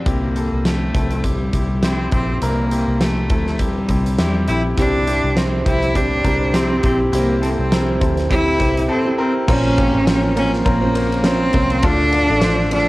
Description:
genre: piano-driven pop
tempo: 102 BPM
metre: 4/4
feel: swing 56% on 16ths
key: unclear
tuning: A4 = 439 Hz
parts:
  - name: clear baby grand piano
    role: accompaniment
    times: 0.0-12.9 s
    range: C3 to C5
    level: -24 LUFS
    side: left 2 dB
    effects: cassette tape
  - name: rich cello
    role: melody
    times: 0.1-12.9 s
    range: G3 to E4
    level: -20 LUFS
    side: equal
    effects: cassette tape
  - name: vintage muted fingered electric bass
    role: bass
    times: 0.1-12.9 s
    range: A1 to E2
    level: -22 LUFS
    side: equal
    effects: none
  - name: huge arena drum kit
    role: drums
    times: 0.1-12.9 s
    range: crash cymbal, hi-hat, kick drum, ride cymbal, snare drum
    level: -21 LUFS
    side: equal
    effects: cassette tape
  - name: fingerpicked steel-string acoustic guitar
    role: riff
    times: 4.8-12.9 s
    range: Bb2 to C5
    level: -21 LUFS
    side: right 3 dB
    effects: cassette tape
room: light reverb, studio reverb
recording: home recording on cassette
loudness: -15 LUFS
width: side -19 dB against mid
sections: 0.1-9.5 A section; 9.5-12.9 B section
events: break 8.9-9.5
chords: 0.1 C; 9.5 Bbmadd9; 11.8 Dm

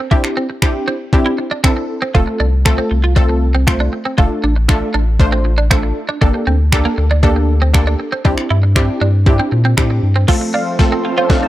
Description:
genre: dance-pop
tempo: 118 BPM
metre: 4/4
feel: straight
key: F major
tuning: A4 = 441 Hz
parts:
  - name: twelve-string electric guitar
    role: riff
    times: 0.0-11.5 s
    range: Bb3 to F4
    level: -20 LUFS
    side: right 4 dB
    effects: wide subtle chorus
  - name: wide unison pluck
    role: accompaniment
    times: 0.1-11.5 s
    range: A3 to C5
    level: -19 LUFS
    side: equal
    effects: sidechain pumping
  - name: crisp 8-bit digital drum machine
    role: drums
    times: 0.1-11.4 s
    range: crash cymbal, finger snaps, kick drum, snare drum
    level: -13 LUFS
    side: equal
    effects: overdrive
  - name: warm sub bass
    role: bass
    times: 2.1-10.3 s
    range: F1 to Bb2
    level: -14 LUFS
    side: equal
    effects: sidechain pumping
  - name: lush unison pad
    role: sustained chords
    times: 10.3-11.5 s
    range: F3 to C5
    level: -23 LUFS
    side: equal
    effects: chorus, sidechain pumping
  - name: glassy wavetable pluck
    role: arpeggios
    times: 10.3-11.5 s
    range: F4 to A5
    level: -21 LUFS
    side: equal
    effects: chorus, sidechain pumping, analog delay
  - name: riser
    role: sound effects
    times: 10.7-11.5 s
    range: none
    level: -24 LUFS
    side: right 1 dB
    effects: none
room: little or no reverb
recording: dry, gritty hardware recording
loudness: -12 LUFS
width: side -15 dB against mid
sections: 0.0-10.3 A section; 10.3-11.5 B section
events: build-up 10.3-11.5; drum fill 10.3-11.5; riser 10.7-11.5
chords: 0.1 Cadd9; 2.1 F; 6.2 Gmadd9; 8.3 Cadd9; 10.3 F

